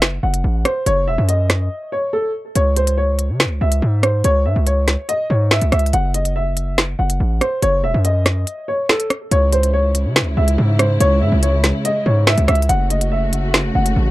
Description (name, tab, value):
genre	hip hop, drill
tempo	142 BPM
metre	4/4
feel	half-time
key	C# harmonic minor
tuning	A4 = 439 Hz
part	distorted 808-style bass	bass	0.0-14.1 s	E1 to C#3	-16 LUFS	equal	distortion
part	drill drum kit	drums	0.0-14.0 s	finger snaps, hi-hat, rim click, snare drum	-17 LUFS	equal	none
part	dark grand piano	melody	0.2-14.1 s	A4 to F#5	-20 LUFS	equal	low-pass filter, analog delay
part	warm symphonic string section	sustained chords	9.3-14.1 s	C#3 to F#4	-23 LUFS	equal	none
room	little or no reverb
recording	dark, warm production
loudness	-15 LUFS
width	side -17 dB against mid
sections	0.0-9.3 A section; 9.3-14.1 B section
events	break 1.7-2.6, 8.5-9.3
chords	0.0 N.C.; 2.6 C#m; 5.9 N.C.; 9.3 C#m; 12.7 F#m